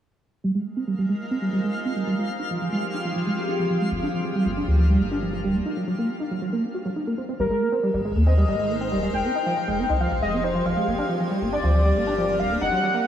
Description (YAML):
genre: IDM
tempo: 138 BPM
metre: 4/4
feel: straight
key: Ab lydian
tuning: A4 = 441 Hz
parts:
  - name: icy glass pad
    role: sustained chords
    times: 1.1-13.1 s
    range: Eb3 to C5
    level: -30 LUFS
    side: left 2 dB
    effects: chorus, built-in reverb
  - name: deep acid bass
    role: arpeggios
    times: 0.4-13.1 s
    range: F3 to Gb4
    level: -25 LUFS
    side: right 2 dB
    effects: analog chorus, tape echo
  - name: twinkling granular texture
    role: texture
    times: 1.0-5.7 s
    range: F4 to F5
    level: -34 LUFS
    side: right 1 dB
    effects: built-in reverb
  - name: rubbery square bass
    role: bass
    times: 3.9-12.7 s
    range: D1 to Eb2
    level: -23 LUFS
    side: equal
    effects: tube saturation
  - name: warm velvety synth lead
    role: melody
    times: 7.4-13.1 s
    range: Bb4 to G5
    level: -25 LUFS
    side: left 1 dB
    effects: chorus, vintage 12-bit sampler grit, tape echo
room: moderate huge ambient reverb, RT60 8.6 s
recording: small room ambience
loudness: -21 LUFS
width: side -10 dB against mid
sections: 0.4-7.4 A section; 7.4-13.1 B section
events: filter sweep on ambient pad 0.4-7.4; filter sweep on acid bass 0.4-7.4; break 5.7-7.4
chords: 0.4 Abmaj9; 2.2 Fm7; 3.9 Gm7; 5.7 Ebm6/Gb; 7.4 Abmaj9; 9.1 Fm7; 10.9 Gm7